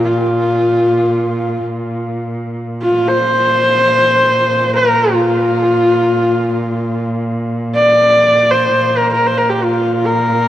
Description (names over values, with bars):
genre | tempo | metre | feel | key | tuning
mongolian traditional, Mongolian folk | free time | none | none | Bb gong mode | A4 = 440 Hz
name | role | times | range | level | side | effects
bright horsehead fiddle | melody | 0.0-10.5 s | F4 to D5 | -12 LUFS | equal | tape echo
clear cello | drone | 0.0-10.5 s | Bb2 | -19 LUFS | right 1 dB | none
room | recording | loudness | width
wet scoring stage reverb, RT60 1.5 s | worn, warbling old tape, cassette tape, warbly pitch drift | -12 LUFS | side -12 dB against mid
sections
0.0-10.5 A section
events
none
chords
none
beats
free time